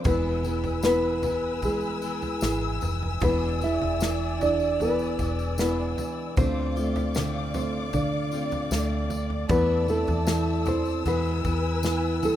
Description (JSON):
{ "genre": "pop ballad", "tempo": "77 BPM", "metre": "4/4", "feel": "straight", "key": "unclear", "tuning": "A4 = 440 Hz", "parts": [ { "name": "nylon-string guitar", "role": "melody", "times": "0.0-12.4 s", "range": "G#3 to E5", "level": "-28 LUFS", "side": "equal", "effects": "digital delay" }, { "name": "felt-muted upright piano", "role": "accompaniment", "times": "0.0-12.4 s", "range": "D3 to A3", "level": "-31 LUFS", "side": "right 3 dB", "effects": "none" }, { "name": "warm studio string section", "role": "sustained chords", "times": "0.0-12.4 s", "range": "B4 to E6", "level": "-33 LUFS", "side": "left 2 dB", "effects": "none" }, { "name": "picked steel-string acoustic guitar", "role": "arpeggios", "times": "0.0-12.4 s", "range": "E2 to F4", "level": "-37 LUFS", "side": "left 4 dB", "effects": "none" }, { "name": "tambourine", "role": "percussion", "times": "0.0-12.4 s", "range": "none", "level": "-44 LUFS", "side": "left 2 dB", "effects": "none" }, { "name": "vintage muted fingered electric bass", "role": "bass", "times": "0.1-12.2 s", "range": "E1 to E2", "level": "-30 LUFS", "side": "left 1 dB", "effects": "none" }, { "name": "natural country drum kit", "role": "drums", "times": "0.1-12.4 s", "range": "kick drum, snare drum, toms", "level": "-30 LUFS", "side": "equal", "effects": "none" } ], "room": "small room ambience", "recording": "rough home demo mix", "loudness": "-23 LUFS", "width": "side -12 dB against mid", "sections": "0.0-12.4 A section", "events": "none", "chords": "0.1 E; 3.2 E7; 6.4 Dm7; 9.5 Am/E; 11.1 E" }